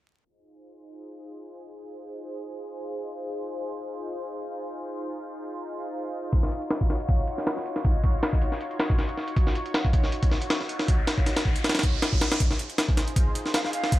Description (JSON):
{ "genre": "drum and bass, jungle", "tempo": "158 BPM", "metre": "4/4", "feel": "swing 54% on 16ths", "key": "F phrygian", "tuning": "A4 = 440 Hz", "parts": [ { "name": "lush unison pad", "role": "sustained chords", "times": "0.7-14.0 s", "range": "Eb4 to Db5", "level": "-33 LUFS", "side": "equal", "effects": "chorus, phaser, vintage 12-bit sampler grit" }, { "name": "breakbeat sampler-style drum kit", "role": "drums", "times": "6.3-14.0 s", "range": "hi-hat, kick drum, snare drum", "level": "-23 LUFS", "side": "equal", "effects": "studio reverb" }, { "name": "riser", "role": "sound effects", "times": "10.5-14.0 s", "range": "none", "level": "-35 LUFS", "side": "right 2 dB", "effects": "none" }, { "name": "silver concert flute", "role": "melody", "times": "13.5-14.0 s", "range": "F5", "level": "-29 LUFS", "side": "right 2 dB", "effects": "none" } ], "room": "digital ambience", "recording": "vinyl crackle, low-pass filter", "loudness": "-24 LUFS", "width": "side -16 dB against mid", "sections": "0.3-12.4 A section; 12.4-14.0 B section", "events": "filter sweep 0.3-12.4; riser 10.5-12.4, 12.4-14.0; build-up 12.4-14.0", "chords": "0.3 Fm7; 6.3 Ebm9; 12.4 Fm7" }